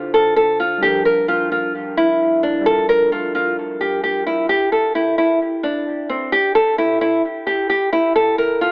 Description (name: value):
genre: hip hop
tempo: 131 BPM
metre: 4/4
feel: half-time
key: unclear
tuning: A4 = 440 Hz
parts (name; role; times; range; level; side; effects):
- mellow tine electric piano; accompaniment; 0.0-4.5 s; D3 to C5; -26 LUFS; equal; medium stereo tremolo, dub echo
- nylon-string guitar; melody; 0.1-8.7 s; C4 to Bb4; -15 LUFS; equal; dub echo
room: moderate spring reverb, RT60 1.5 s, small room ambience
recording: echo-heavy mix, telephone sound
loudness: -15 LUFS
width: side -33 dB against mid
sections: 0.0-4.5 A section; 4.5-8.7 B section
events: none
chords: 0.0 Dm7; 0.8 Gm7; 4.5 N.C.